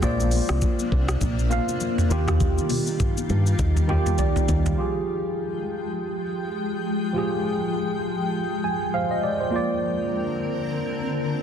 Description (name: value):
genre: afrobeats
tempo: 101 BPM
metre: 4/4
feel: swing 58% on 16ths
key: F dorian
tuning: A4 = 438 Hz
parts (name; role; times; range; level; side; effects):
- tine electric piano; accompaniment; 0.0-11.4 s; Eb3 to Ab5; -26 LUFS; right 2 dB; wide subtle chorus
- granular cloud pad; sustained chords; 0.0-11.4 s; C3 to G5; -29 LUFS; left 2 dB; built-in reverb
- fingered electric bass with an envelope filter; bass; 0.0-4.7 s; Bb1 to G2; -23 LUFS; equal; none
- afro-pop drum kit; drums; 0.0-4.8 s; hi-hat, kick drum, rim click, shaker, toms; -24 LUFS; equal; vintage 12-bit sampler grit
- congas; percussion; 0.2-4.6 s; none; -35 LUFS; left 9 dB; none
room: light reverb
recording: dense, heavily limited modern master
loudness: -22 LUFS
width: side -8 dB against mid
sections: 0.0-4.8 A section; 4.8-11.4 B section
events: drum fill 2.4-4.8; tine electric piano fill 3.6-4.8, 8.3-9.5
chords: 0.0 Bbadd9; 2.1 Ebadd9; 4.8 Fmadd9; 9.5 Bbadd9